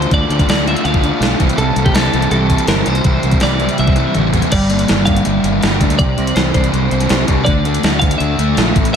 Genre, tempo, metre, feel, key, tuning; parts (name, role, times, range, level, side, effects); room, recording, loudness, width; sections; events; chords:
indie rock; 163 BPM; 4/4; straight; D minor; A4 = 438 Hz
twelve-string electric guitar; melody; 0.0-9.0 s; G4 to F5; -21 LUFS; equal; ping-pong delay
fuzz guitar; riff; 0.0-9.0 s; A2 to G4; -17 LUFS; equal; distortion
growling fingered electric bass; bass; 0.0-8.9 s; G1 to D2; -18 LUFS; equal; overdrive
gated 80s digital drum machine; drums; 0.0-8.9 s; crash cymbal, hi-hat, kick drum, snare drum, toms; -16 LUFS; equal; gated reverb, gated reverb snare
moderate cathedral reverb, RT60 4.8 s; dreamy mix soaked in reverb; -12 LUFS; side -7 dB against mid
0.0-4.5 A section; 4.5-9.0 B section
drum fill 4.2-4.5
0.0 Dm; 1.4 C; 4.5 Gm; 6.0 Cadd9; 7.5 Dm